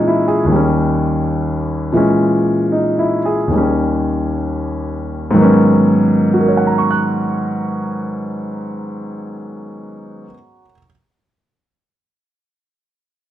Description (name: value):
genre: solo jazz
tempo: 62-91 BPM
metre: 4/4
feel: swing 68% on 8ths, rubato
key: G# minor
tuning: A4 = 440 Hz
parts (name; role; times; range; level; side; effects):
- warm concert grand piano; solo; 0.0-10.9 s; D#2 to F#6; -14 LUFS; equal; none
room: wet large studio reverb, RT60 0.9 s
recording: none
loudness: -13 LUFS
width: side -12 dB against mid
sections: 0.0-5.4 A section; 5.4-9.2 B section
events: slowing down 0.0-5.4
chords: 0.0 A#m7b5; 0.5 D#7; 2.0 A#m7b5; 3.5 D#7; 5.4 G#m11